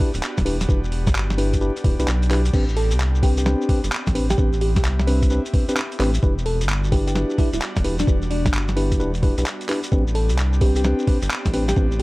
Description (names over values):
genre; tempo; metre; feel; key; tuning
UK garage, two-step garage; 130 BPM; 4/4; swing 66% on 16ths; A dorian; A4 = 440 Hz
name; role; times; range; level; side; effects
airy breathy pad; sustained chords; 0.0-12.0 s; G3 to G4; -33 LUFS; equal; chorus, sidechain pumping
mellow tine electric piano; stabs; 0.0-11.9 s; C4 to B4; -25 LUFS; left 1 dB; low-pass filter, dub echo
boom bap sampler-style drum kit; drums; 0.0-12.0 s; crash cymbal, handclaps, hi-hat, snare drum; -28 LUFS; equal; none
rubbery square bass; bass; 0.1-12.0 s; D1 to C2; -21 LUFS; equal; sidechain pumping
shekere; percussion; 0.1-12.0 s; none; -36 LUFS; left 2 dB; none
electronic kick drum; drums; 0.4-11.9 s; none; -20 LUFS; equal; none
bell-like FM electric piano; melody; 2.8-12.0 s; D4 to A4; -28 LUFS; right 1 dB; chorus, phaser, cassette tape, dub echo
room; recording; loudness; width
little or no reverb; dark, warm production, vinyl crackle; -18 LUFS; side -21 dB against mid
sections
0.0-12.0 A section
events
none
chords
0.0 Em7; 2.5 Am11; 6.2 Em7; 9.9 Am11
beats
0.23 | 0.69 1.15 1.61 2.07 | 2.54 3.00 3.46 3.92 | 4.38 4.84 5.30 5.77 | 6.23 6.69 7.15 7.61 | 8.07 8.54 9.00 9.46 | 9.92 10.38 10.84 11.30 | 11.77